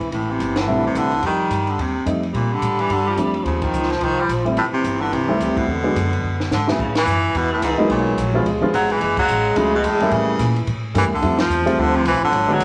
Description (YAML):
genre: jazz, small-group swing and bop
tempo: 216 BPM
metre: 4/4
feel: swing 59% on 8ths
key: F major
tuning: A4 = 441 Hz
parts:
  - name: warm tenor saxophone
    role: second line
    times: 0.0-12.6 s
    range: D3 to G#3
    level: -26 LUFS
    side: equal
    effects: none
  - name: upright bass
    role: bass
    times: 0.0-12.6 s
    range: F1 to Bb2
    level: -27 LUFS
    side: equal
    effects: none
  - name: compact cocktail drum kit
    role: drums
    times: 0.0-12.6 s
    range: crash cymbal, hi-hat, kick drum, ride cymbal, snare drum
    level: -32 LUFS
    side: equal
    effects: none
  - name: edgy baritone saxophone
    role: melody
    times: 0.1-12.6 s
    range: G#2 to G3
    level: -24 LUFS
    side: equal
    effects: none
  - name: warm upright piano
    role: accompaniment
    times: 0.7-12.6 s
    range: A2 to F4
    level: -24 LUFS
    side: equal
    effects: none
room: wet large studio reverb, RT60 1.2 s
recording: none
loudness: -19 LUFS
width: mono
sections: 0.0-6.8 A section; 6.8-12.6 B section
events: band accent 0.5, 3.6, 5.5, 6.9, 9.2, 11.4; drum fill 6.2-6.8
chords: 0.1 Am7; 1.2 F9; 2.3 Bbmaj9; 3.5 Eb7sus2; 4.6 Fmaj9; 5.7 E9; 6.8 A69; 7.9 G#m9; 8.5 C#7; 9.0 F#m9; 10.1 A7b9; 11.2 Dm11